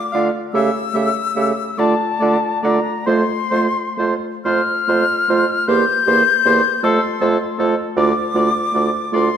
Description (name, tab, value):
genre	classical, slow romantic movement for wind quintet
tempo	42-53 BPM (dotted quarters)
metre	6/8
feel	rubato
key	unclear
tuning	A4 = 440 Hz
part	silver concert flute	melody	0.0-9.4 s	A5 to G6	-19 LUFS	left 5 dB	none
part	warm oboe	second line	0.1-9.3 s	A4 to F5	-23 LUFS	left 1 dB	none
part	dark French horn	accompaniment	0.1-9.3 s	A3 to Bb3	-22 LUFS	right 2 dB	none
part	warm clarinet	accompaniment	0.1-9.3 s	F4 to G4	-23 LUFS	right 8 dB	none
part	clear bassoon	bass	0.1-9.3 s	D2 to D3	-22 LUFS	right 1 dB	none
room	wet scoring stage reverb, RT60 1.6 s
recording	none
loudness	-15 LUFS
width	side -8 dB against mid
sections	0.0-9.4 A section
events	none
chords	0.0 Dm; 0.5 A7/C#; 1.8 Dm; 3.1 F; 5.7 C7/E; 6.8 F; 8.0 Dm